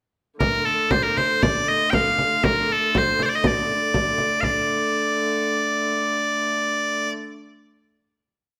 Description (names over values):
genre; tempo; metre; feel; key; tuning
medieval dance; 120 BPM; 2/4; straight; D phrygian; A4 = 439 Hz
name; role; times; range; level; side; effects
loud bright bagpipes; melody; 0.4-7.1 s; A4 to G5; -23 LUFS; equal; none
dark hurdy-gurdy; drone; 0.4-7.2 s; D3 to A3; -31 LUFS; equal; none
frame drum; percussion; 0.4-4.7 s; none; -26 LUFS; equal; none
room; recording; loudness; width
wet stone room reverb, RT60 1.2 s; band playing live in one room; -21 LUFS; mono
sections
0.4-4.4 A section; 4.4-6.3 final chord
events
speeding up 0.4-6.3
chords
none